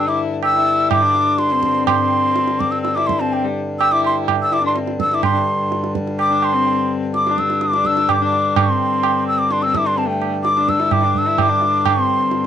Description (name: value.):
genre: indian classical, Hindustani.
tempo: 126 BPM.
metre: 7/4.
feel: straight.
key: G raga durga.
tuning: A4 = 442 Hz.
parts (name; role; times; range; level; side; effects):
breathy mellow bansuri; melody; 0.0-12.5 s; G5 to E6; -17 LUFS; equal; none.
rich sarangi; second line; 0.0-12.5 s; G3 to E4; -23 LUFS; left 9 dB; none.
pedal harmonium; drone; 0.0-12.5 s; G2 to D3; -24 LUFS; left 1 dB; none.
tabla; percussion; 0.4-12.5 s; none; -22 LUFS; right 9 dB; none.
room: little or no reverb.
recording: dry, close 1970s-style studio recording.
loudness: -15 LUFS.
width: side -9 dB against mid.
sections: 0.0-5.2 A section; 5.2-12.5 B section.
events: speeding up 0.0-12.5.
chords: none.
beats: 0.43 0.91 1.40 | 1.88 2.36 2.84 3.33 3.81 4.29 4.76 | 5.24 5.72 6.20 6.67 7.15 7.62 8.09 | 8.56 9.04 9.51 9.98 10.45 10.92 11.38 | 11.85 12.32.